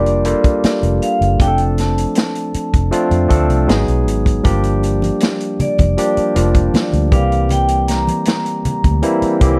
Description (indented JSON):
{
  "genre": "lush 1970s-style soul",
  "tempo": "79 BPM",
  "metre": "4/4",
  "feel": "straight",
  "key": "G dorian",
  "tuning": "A4 = 440 Hz",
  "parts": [
    { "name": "vibraphone with medium hard mallets", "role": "melody", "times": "0.0-9.4 s", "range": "D5 to Bb5", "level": "-23 LUFS", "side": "equal", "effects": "none" },
    { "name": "barky tine electric piano", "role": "accompaniment", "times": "0.0-9.6 s", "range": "Eb3 to Bb4", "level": "-20 LUFS", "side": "equal", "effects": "none" },
    { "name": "vintage muted fingered electric bass", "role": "bass", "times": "0.0-9.6 s", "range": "F1 to F2", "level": "-19 LUFS", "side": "equal", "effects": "none" },
    { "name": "vintage drum kit", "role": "drums", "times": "0.1-9.6 s", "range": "hi-hat, kick drum, snare drum", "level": "-19 LUFS", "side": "equal", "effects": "none" },
    { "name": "congas", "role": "percussion", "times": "4.4-9.6 s", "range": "none", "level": "-27 LUFS", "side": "equal", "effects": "none" }
  ],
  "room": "little or no reverb",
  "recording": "dry, close 1970s-style studio recording",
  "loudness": "-16 LUFS",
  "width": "mono",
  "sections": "0.0-9.6 A section",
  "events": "none",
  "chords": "0.0 Gm7; 1.4 F6; 3.7 Abm7; 4.4 Gm7; 7.1 C7",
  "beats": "0.63 | 1.39 2.16 2.92 3.68 | 4.45 5.21 5.97 6.74 | 7.50 8.27 9.03"
}